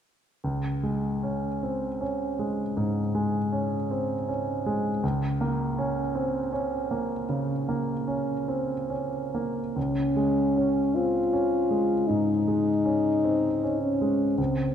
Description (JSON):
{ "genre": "classical, romantic duo for French horn and grand piano", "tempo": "52 BPM", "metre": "4/4", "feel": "uneven beats, rubato", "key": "Db major", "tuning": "A4 = 440 Hz", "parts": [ { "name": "warm grand piano", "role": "accompaniment", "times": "0.4-14.7 s", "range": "Db2 to Db4", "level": "-26 LUFS", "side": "right 1 dB", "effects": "none" }, { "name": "mellow French horn", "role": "melody", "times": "9.8-14.7 s", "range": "C4 to F4", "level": "-24 LUFS", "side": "left 2 dB", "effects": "none" } ], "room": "moderate concert hall reverb, RT60 1.7 s", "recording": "none", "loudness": "-24 LUFS", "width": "side -9 dB against mid", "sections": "0.4-9.8 A section; 9.8-14.7 B section", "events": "none", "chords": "0.4 Db5; 5.0 Bbmadd9/Db; 9.8 Db" }